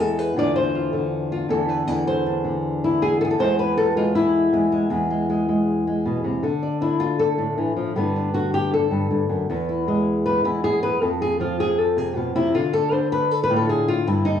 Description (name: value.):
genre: flamenco.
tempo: 157 BPM.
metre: 4/4.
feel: straight.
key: unclear.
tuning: A4 = 442 Hz.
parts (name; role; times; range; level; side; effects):
flamenco guitar; solo; 0.0-14.4 s; E2 to D5; -19 LUFS; left 1 dB; none.
room: wet studio ambience, RT60 0.5 s.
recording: home recording on cassette, small room reverb.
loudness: -19 LUFS.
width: side -8 dB against mid.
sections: 0.0-6.4 A section; 6.4-14.4 B section.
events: nylon-string guitar solo 6.4-14.4.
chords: 0.4 Dm/E; 3.4 E; 6.4 Dm; 8.0 Gadd9; 9.5 E; 11.0 F5; 12.5 Dm.